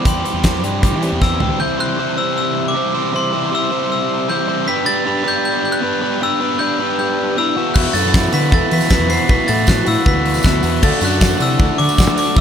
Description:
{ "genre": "indie rock", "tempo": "156 BPM", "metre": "4/4", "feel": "straight", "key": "unclear", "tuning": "A4 = 440 Hz", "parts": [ { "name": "glockenspiel with hard plastic mallets", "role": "melody", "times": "0.0-12.4 s", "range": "C6 to C7", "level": "-20 LUFS", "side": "left 2 dB", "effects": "slapback echo" }, { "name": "biting overdriven guitar", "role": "riff", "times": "0.0-12.4 s", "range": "E2 to C5", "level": "-18 LUFS", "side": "right 1 dB", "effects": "none" }, { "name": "fuzz fingered electric bass", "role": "bass", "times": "0.0-1.5, 7.8-12.4 s", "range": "A1 to E3", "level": "-20 LUFS", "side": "equal", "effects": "overdrive" }, { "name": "big rock drum kit", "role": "drums", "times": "0.1-1.5, 7.8-12.4 s", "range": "crash cymbal, hi-hat, kick drum, snare drum, toms", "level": "-17 LUFS", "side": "equal", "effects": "none" }, { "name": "tine electric piano", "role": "second line", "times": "7.0-12.4 s", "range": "D4 to C5", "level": "-25 LUFS", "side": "left 6 dB", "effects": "none" }, { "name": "combo organ", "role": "sustained chords", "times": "7.8-12.4 s", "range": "E4 to D6", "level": "-32 LUFS", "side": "equal", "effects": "none" }, { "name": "tambourine", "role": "percussion", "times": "7.9-12.4 s", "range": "none", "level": "-31 LUFS", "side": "right 10 dB", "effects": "none" } ], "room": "little or no reverb", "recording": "none", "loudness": "-14 LUFS", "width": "side -8 dB against mid", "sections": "0.0-1.6 A section; 1.6-12.4 B section", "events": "drum fill 1.2-1.6", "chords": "0.0 C; 4.7 G/B; 7.6 Esus2; 10.8 D", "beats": "| 0.06 0.44 0.83 1.22 | 1.61 1.99 2.38 2.76 | 3.15 3.53 3.92 4.30 | 4.69 5.07 5.46 5.84 | 6.22 6.61 6.99 7.38 | 7.76 8.14 8.53 8.91 | 9.30 9.68 10.06 10.45 | 10.83 11.22 11.60 11.98 | 12.37" }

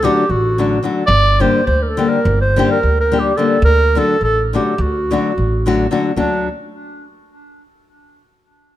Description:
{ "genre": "balkan folk, Balkan wedding band", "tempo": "212 BPM (eighths)", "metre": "9/8", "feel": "straight", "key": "unclear", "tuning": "A4 = 440 Hz", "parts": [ { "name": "warm clarinet", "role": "melody", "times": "0.0-6.5 s", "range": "D4 to D5", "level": "-17 LUFS", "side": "right 1 dB", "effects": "tape echo" }, { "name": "nylon-string guitar", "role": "accompaniment", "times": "0.0-6.5 s", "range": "D3 to G4", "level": "-18 LUFS", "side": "left 4 dB", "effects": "none" }, { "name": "upright bass", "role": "bass", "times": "0.0-6.5 s", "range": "G1 to D2", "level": "-17 LUFS", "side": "right 1 dB", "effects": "none" } ], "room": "moderate recital hall reverb, RT60 1.4 s", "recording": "close, detailed microphones", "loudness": "-13 LUFS", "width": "side -13 dB against mid", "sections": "0.0-6.2 A section; 6.2-8.7 B section", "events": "none", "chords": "0.0 D; 1.1 Gm; 3.6 D", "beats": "0.25 0.53 0.81 | 1.09 1.37 1.66 1.94 2.22 2.50 2.79 3.07 3.35 | 3.63 3.92 4.20 4.48 4.76 5.04 5.33 5.61 5.89 | 6.18 6.46" }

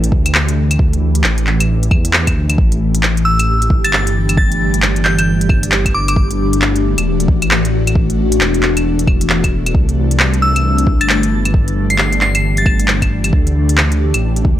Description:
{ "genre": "future garage", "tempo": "134 BPM", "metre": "4/4", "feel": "swing 62% on 16ths", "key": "A dorian", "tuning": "A4 = 440 Hz", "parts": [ { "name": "ethereal airy pad", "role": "sustained chords", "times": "0.0-14.6 s", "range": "E3 to G4", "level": "-19 LUFS", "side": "left 2 dB", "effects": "ensemble chorus, built-in reverb, phaser, sidechain pumping" }, { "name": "dark detuned saw bass", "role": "bass", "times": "0.0-14.6 s", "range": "E1 to E2", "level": "-16 LUFS", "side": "equal", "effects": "sidechain pumping" }, { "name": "organic electronic drum kit", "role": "drums", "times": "0.0-14.4 s", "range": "claves, handclaps, hi-hat", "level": "-17 LUFS", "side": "equal", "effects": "none" }, { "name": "electronic kick drum", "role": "drums", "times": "0.1-14.6 s", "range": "none", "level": "-15 LUFS", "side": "equal", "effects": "none" }, { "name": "glassy synth bell", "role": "melody", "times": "3.2-6.1, 10.4-12.7 s", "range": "D6 to C7", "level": "-19 LUFS", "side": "equal", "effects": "chorus, analog delay" } ], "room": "light reverb, digital ambience", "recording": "dry, gritty hardware recording", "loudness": "-11 LUFS", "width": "side -12 dB against mid", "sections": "0.0-2.6 A section; 2.6-14.6 A section", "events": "none", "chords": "0.0 Dsus4; 2.6 A5; 9.7 C; 13.3 Dsus4", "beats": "0.34 | 0.79 1.24 1.69 2.13 | 2.58 3.03 3.48 3.93 | 4.37 4.82 5.27 5.72 | 6.17 6.61 7.06 7.51 | 7.96 8.40 8.85 9.30 | 9.75 10.19 10.64 11.09 | 11.54 11.98 12.43 12.88 | 13.33 13.78 14.22" }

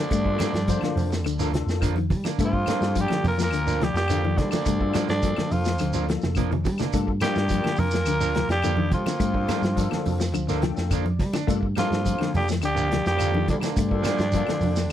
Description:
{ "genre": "afrobeat", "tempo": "106 BPM", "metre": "4/4", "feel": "straight", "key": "G minor", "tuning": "A4 = 442 Hz", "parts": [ { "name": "raspy tenor saxophone", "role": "melody", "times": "0.0-14.9 s", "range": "D4 to Bb4", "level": "-28 LUFS", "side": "right 1 dB", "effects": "none" }, { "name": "mellow bassoon", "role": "second line", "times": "0.0-14.9 s", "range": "D3 to Bb3", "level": "-34 LUFS", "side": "right 7 dB", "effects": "none" }, { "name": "raspy baritone saxophone", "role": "second line", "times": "0.0-14.9 s", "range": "D2 to Bb2", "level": "-36 LUFS", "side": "left 7 dB", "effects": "none" }, { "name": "clean electric guitar", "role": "arpeggios", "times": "0.0-14.9 s", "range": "Bb2 to A3", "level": "-30 LUFS", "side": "left 10 dB", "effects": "slapback echo" }, { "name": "electric guitar at the edge of break-up", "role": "stabs", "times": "0.0-14.9 s", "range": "F3 to D4", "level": "-33 LUFS", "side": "right 12 dB", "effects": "none" }, { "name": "fingered electric bass", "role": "bass", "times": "0.1-14.9 s", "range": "D2 to G3", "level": "-26 LUFS", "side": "equal", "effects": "none" }, { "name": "vintage drum kit", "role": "drums", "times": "0.1-14.9 s", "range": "hi-hat, kick drum, snare drum", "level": "-29 LUFS", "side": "equal", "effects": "none" }, { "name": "shekere", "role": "percussion", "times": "0.1-14.9 s", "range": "none", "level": "-35 LUFS", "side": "right 2 dB", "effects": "none" }, { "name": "barky tine electric piano", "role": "accompaniment", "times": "0.3-14.8 s", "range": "Bb3 to G5", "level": "-33 LUFS", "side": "left 10 dB", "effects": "overdrive, ensemble chorus" }, { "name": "claves", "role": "percussion", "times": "0.4-14.9 s", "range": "none", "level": "-39 LUFS", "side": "left 15 dB", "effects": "none" }, { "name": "congas", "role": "percussion", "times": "0.4-14.8 s", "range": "none", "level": "-31 LUFS", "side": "right 4 dB", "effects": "none" } ], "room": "little or no reverb", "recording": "none", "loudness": "-21 LUFS", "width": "side -11 dB against mid", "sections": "0.0-14.9 A section", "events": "drum fill 5.8-6.9; tine electric piano fill 10.3-11.5", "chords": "0.0 Gm7", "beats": "| 0.11 0.68 1.25 1.82 | 2.39 2.96 3.53 4.10 | 4.66 5.23 5.80 6.37 | 6.94 7.51 8.07 8.64 | 9.21 9.78 10.35 10.92 | 11.49 12.06 12.63 13.20 | 13.77 14.34 14.91" }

